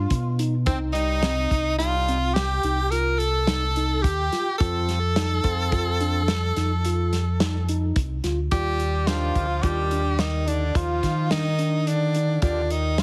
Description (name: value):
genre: progressive instrumental, band music in an uneven meter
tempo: 107 BPM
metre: 7/4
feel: straight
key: Eb lydian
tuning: A4 = 440 Hz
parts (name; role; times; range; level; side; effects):
- edgy tenor saxophone; melody; 0.0-13.0 s; C4 to Bb4; -29 LUFS; equal; none
- bright alto saxophone; second line; 0.0-13.0 s; D3 to Bb4; -34 LUFS; equal; none
- mellow tine electric piano; arpeggios; 0.0-13.0 s; C4 to F4; -33 LUFS; equal; none
- sub bass with octave; bass; 0.0-13.0 s; C2 to Eb3; -27 LUFS; equal; none
- warm soul drum kit; drums; 0.1-13.0 s; hi-hat, kick drum, snare drum; -29 LUFS; equal; none
- bright tonewheel organ; accompaniment; 0.9-12.6 s; C3 to A4; -37 LUFS; equal; none
room: light reverb, small room ambience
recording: heavily compressed radio sound, multiband compression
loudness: -23 LUFS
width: mono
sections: 0.0-8.5 A section; 8.5-13.0 B section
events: none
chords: 0.0 G7 (rootless); 0.7 Cm; 4.6 F; 8.5 Ebmaj9